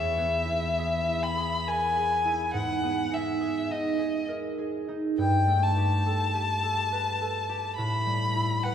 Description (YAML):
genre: classical, impressionist duo for violin and harp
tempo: 69 BPM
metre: 3/4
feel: rubato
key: G major from 5.2 s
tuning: A4 = 440 Hz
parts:
  - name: rich violin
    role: melody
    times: 0.0-8.7 s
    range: D#5 to B5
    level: -27 LUFS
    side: left 2 dB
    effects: none
  - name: concert harp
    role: accompaniment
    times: 0.0-8.7 s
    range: E2 to B4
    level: -28 LUFS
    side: right 2 dB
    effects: none
room: wet church reverb, RT60 3.7 s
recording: recorded in a church or concert hall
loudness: -25 LUFS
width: side -8 dB against mid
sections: 0.0-8.7 A section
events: none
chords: 0.0 E; 2.5 G#m; 5.2 Gadd9; 7.8 A7sus2